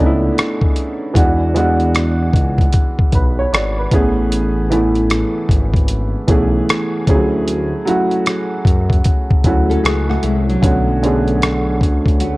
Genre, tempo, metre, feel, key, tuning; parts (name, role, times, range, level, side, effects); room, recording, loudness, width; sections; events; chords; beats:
lo-fi hip hop; 76 BPM; 4/4; swing 65% on 16ths; A4 = 440 Hz
dark upright piano; accompaniment; 0.0-12.4 s; D3 to D5; -17 LUFS; right 1 dB; low-pass filter
smooth synth bass; bass; 0.0-12.4 s; G#1 to F#2; -18 LUFS; equal
dusty soul sampler-style drum kit; drums; 0.4-12.4 s; hi-hat, kick drum, rim click; -15 LUFS; equal
nylon-string guitar; second line; 9.7-12.4 s; F#3 to A4; -22 LUFS; left 2 dB; low-pass filter, tape echo
light reverb, small room ambience; cassette tape; -13 LUFS; side -20 dB against mid
0.0-12.4 A section
0.0 Bm9; 1.2 E9; 3.9 Amaj9; 7.1 Dmaj9#11; 10.6 Bm9
0.36 | 1.15 1.94 2.73 3.52 | 4.31 5.10 5.89 6.68 | 7.47 8.26 9.05 9.84 | 10.63 11.42 12.21